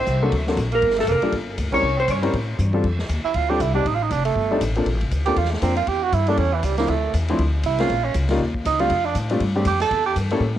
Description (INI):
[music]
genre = jazz, small-group swing and bop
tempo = 238 BPM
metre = 4/4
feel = swing 58% on 8ths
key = F major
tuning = A4 = 438 Hz
[part]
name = hollow-body jazz guitar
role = melody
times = 0.0-2.4 s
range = A4 to Db5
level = -23 LUFS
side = equal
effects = cassette tape, tape echo
[part]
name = warm tenor saxophone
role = second line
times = 0.0-10.2 s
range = E3 to A4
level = -24 LUFS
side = right 8 dB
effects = none
[part]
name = upright bass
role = bass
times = 0.0-10.6 s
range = F1 to A2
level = -23 LUFS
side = left 1 dB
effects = tube saturation
[part]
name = vintage drum kit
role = drums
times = 0.1-10.6 s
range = crash cymbal, hi-hat, kick drum, ride cymbal, snare drum, toms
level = -31 LUFS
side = left 1 dB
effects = cassette tape
[part]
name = warm grand piano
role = accompaniment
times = 0.2-10.4 s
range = F3 to Bb4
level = -24 LUFS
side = left 2 dB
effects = none
[sound]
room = light reverb, small room ambience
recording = home recording on cassette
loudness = -18 LUFS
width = side -11 dB against mid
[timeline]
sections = 0.0-2.8 A section; 2.8-10.6 B section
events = band accent 1.7; drum fill 2.6, 10.4; tenor saxophone solo 2.8-10.6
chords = 0.3 D7b13; 0.8 Gm9; 1.8 C5; 2.8 F5; 3.9 F69; 4.9 Bbmaj7; 5.9 Em; 6.4 A; 6.9 Dm7; 7.9 Bbm; 8.4 Eb9; 8.9 F6; 9.9 Edim